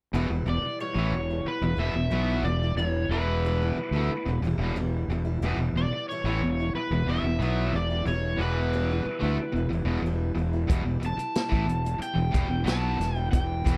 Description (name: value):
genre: classic rock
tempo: 91 BPM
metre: 4/4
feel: straight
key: E dorian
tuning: A4 = 440 Hz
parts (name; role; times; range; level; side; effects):
- picked old ladder-braced acoustic guitar; accompaniment; 0.1-13.8 s; E2 to E4; -38 LUFS; equal; none
- crunchy overdriven guitar; riff; 0.1-13.8 s; E2 to B3; -34 LUFS; equal; none
- tight distorted guitar; riff; 0.1-13.8 s; E2 to B3; -36 LUFS; equal; distortion
- fuzz fingered electric bass; bass; 0.1-13.8 s; E1 to D2; -31 LUFS; equal; overdrive
- overdriven slide guitar; melody; 0.5-13.8 s; B4 to A5; -35 LUFS; equal; none
- vintage drum kit; drums; 10.7-13.8 s; hi-hat, kick drum, snare drum; -29 LUFS; equal; none
room: small room ambience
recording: dry, close 1970s-style studio recording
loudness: -27 LUFS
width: mono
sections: 0.1-13.8 A section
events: none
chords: 0.1 Em